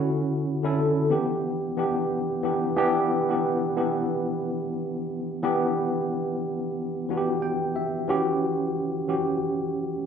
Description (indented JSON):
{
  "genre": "soul",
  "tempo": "90 BPM",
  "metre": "4/4",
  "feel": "swing 58% on 16ths",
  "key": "E dorian",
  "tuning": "A4 = 440 Hz",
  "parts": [
    { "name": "tine electric piano", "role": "solo", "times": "0.0-10.1 s", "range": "D3 to G5", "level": "-24 LUFS", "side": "equal", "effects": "overdrive, medium stereo tremolo" }
  ],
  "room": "wet large studio reverb, RT60 1.4 s",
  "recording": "band playing live in one room",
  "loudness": "-24 LUFS",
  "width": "side -7 dB against mid",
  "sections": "0.0-2.8 A section; 2.8-8.1 B section; 8.1-10.1 C section",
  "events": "tine electric piano fill 7.1-8.1",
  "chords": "0.0 Dmaj9; 1.1 Em7; 8.1 Em69"
}